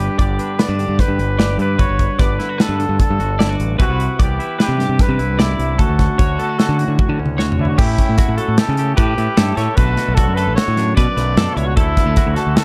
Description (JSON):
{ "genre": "math rock and midwest emo", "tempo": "150 BPM", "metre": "5/4", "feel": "straight", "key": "D major", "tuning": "A4 = 440 Hz", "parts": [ { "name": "warm trumpet", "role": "melody", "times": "0.0-12.6 s", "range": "E4 to D5", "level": "-24 LUFS", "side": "equal", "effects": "none" }, { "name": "twangy electric guitar", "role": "accompaniment", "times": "0.0-12.6 s", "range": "D2 to G4", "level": "-27 LUFS", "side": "equal", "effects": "none" }, { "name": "twelve-string electric guitar", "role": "arpeggios", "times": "0.0-12.6 s", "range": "F#4 to D5", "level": "-29 LUFS", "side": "equal", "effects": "analog chorus" }, { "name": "growling fingered electric bass", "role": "bass", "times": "0.0-12.6 s", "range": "G1 to D3", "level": "-21 LUFS", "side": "equal", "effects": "overdrive" }, { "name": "modern studio drum kit", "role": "drums", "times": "0.2-12.6 s", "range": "crash cymbal, hi-hat, kick drum, snare drum, toms", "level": "-19 LUFS", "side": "equal", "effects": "none" } ], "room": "light reverb", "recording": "dark, warm production", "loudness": "-16 LUFS", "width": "mono", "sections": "0.0-7.8 A section; 7.8-12.6 B section", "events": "drum fill 7.0-7.8", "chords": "0.0 Gmaj7; 3.8 Cmaj9#11; 5.8 Dmaj7; 7.8 A9; 9.8 Bm9; 11.8 Dmaj7", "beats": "0.19 0.59 0.99 1.39 | 1.79 2.19 2.59 2.99 3.39 | 3.79 4.19 4.59 4.99 5.39 | 5.79 6.19 6.59 6.99 7.39 | 7.79 8.18 8.58 8.98 9.38 | 9.78 10.18 10.57 10.97 11.37 | 11.77 12.16 12.56" }